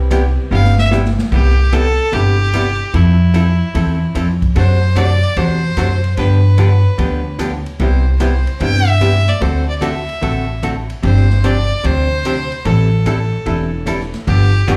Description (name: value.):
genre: country, western swing.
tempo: 148 BPM.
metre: 4/4.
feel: swing 67% on 8ths.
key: C major.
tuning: A4 = 440 Hz.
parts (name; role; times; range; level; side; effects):
warm upright piano; accompaniment; 0.0-0.8 s; G3 to G4; -30 LUFS; equal; none.
upright bass; bass; 0.0-14.8 s; E1 to G2; -16 LUFS; equal; none.
archtop guitar, miked and amplified; accompaniment; 0.1-14.8 s; C3 to A4; -23 LUFS; equal; slapback echo.
swinging big-band drum kit; drums; 0.1-14.8 s; crash cymbal, hi-hat, kick drum, ride cymbal, snare drum; -28 LUFS; equal; none.
clear fiddle; melody; 0.5-14.8 s; E4 to G5; -23 LUFS; equal; none.
room: light reverb.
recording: live gig heard through the venue's PA, club reverb.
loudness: -15 LUFS.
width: mono.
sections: 0.0-1.3 A section; 1.3-14.8 B section.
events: fiddle solo 0.0-1.3; drum fill 0.5-1.3.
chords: 0.0 Cmaj7; 2.9 Fmaj7; 4.6 D7/F#; 6.2 G7; 7.8 Cmaj7; 9.4 D7; 11.0 G7sus4; 12.7 Am7.